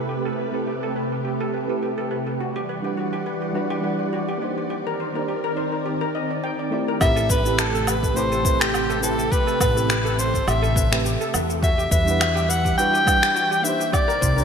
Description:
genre	sunset chillout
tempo	104 BPM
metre	4/4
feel	swing 54% on 16ths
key	A minor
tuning	A4 = 440 Hz
part	mellow FM electric piano	accompaniment	0.0-14.4 s	G3 to G5	-29 LUFS	moving between left 2 dB and right 6 dB	chorus, auto-pan, digital delay
part	soft string machine	sustained chords	0.0-14.4 s	C3 to F#5	-27 LUFS	equal	ensemble chorus, vintage 12-bit sampler grit
part	steel pan	arpeggios	0.0-14.4 s	F#4 to G5	-29 LUFS	right 1 dB	low-pass filter, digital delay
part	warm soprano saxophone	melody	7.0-14.4 s	G4 to G5	-22 LUFS	left 1 dB	ping-pong delay
part	upright bass	bass	7.0-14.4 s	A1 to E2	-24 LUFS	equal	none
part	electronic kick drum	drums	7.0-14.3 s	none	-23 LUFS	equal	none
part	electronic woodblock, cabasa and finger snaps	drums	7.0-14.4 s	none	-26 LUFS	left 1 dB	low-pass filter on perc, low-pass filter on snare, low-pass filter on toms, low-pass filter on room, gated reverb
room	wet lush hall reverb, RT60 2.3 s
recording	bright 1980s-style digital production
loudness	-19 LUFS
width	side -6 dB against mid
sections	0.0-7.0 A section; 7.0-14.4 B section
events	none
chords	0.0 Am9; 2.4 Em9; 4.7 Cm9; 7.0 Am9; 11.6 Em9; 13.9 Cm9

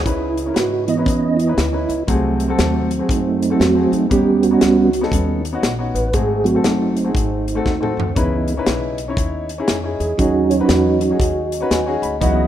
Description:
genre	uptempo gospel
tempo	118 BPM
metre	4/4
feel	swing 63% on 8ths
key	C# minor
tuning	A4 = 440 Hz
part	warm upright piano	accompaniment	0.0-12.5 s	G#2 to B5	-23 LUFS	left 4 dB	none
part	mellow tonewheel organ	sustained chords	0.0-12.5 s	E3 to D#5	-17 LUFS	right 3 dB	fast rotary speaker, chorus vibrato
part	upright bass	bass	0.0-12.5 s	F#1 to G#2	-24 LUFS	equal	none
part	mellow French horn section	sustained chords	0.1-12.5 s	C#3 to D#5	-31 LUFS	left 2 dB	none
part	modern studio drum kit	drums	0.1-12.4 s	hi-hat, kick drum, snare drum, toms	-22 LUFS	left 1 dB	none
room	light reverb, small room ambience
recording	rough home demo mix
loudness	-15 LUFS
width	side -11 dB against mid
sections	0.1-12.5 A section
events	tonewheel organ solo 0.1-12.5; drum fill 7.7-8.2; upright piano fill 11.5-12.2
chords	0.1 C#m9; 2.1 G#7b9/B#; 4.1 D#7alt; 6.1 G#7b9; 8.2 C#m9; 10.2 G#7sus4/D#

